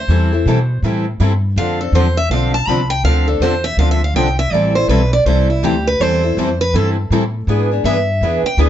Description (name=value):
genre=acoustic string swing (jazz manouche)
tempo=163 BPM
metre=4/4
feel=swing 62% on 8ths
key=A minor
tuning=A4 = 441 Hz
part: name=picked steel-string acoustic guitar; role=melody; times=0.0-8.6 s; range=E4 to B5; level=-18 LUFS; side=right 1 dB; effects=plate reverb
part: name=upright bass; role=bass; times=0.0-8.7 s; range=A1 to B2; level=-16 LUFS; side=equal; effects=none
part: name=picked steel-string acoustic guitar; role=accompaniment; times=0.1-8.7 s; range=D3 to A4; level=-20 LUFS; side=left 5 dB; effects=none
part: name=picked steel-string acoustic guitar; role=accompaniment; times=0.1-8.7 s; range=D3 to B4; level=-23 LUFS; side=right 6 dB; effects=none
room=light reverb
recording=dark, warm production, nothing above 7.8 kHz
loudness=-13 LUFS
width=side -11 dB against mid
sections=0.0-8.7 A section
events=steel-string acoustic guitar solo 0.0-8.7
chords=0.0 Am9; 1.6 Dm9; 4.5 Am9; 7.5 E7#9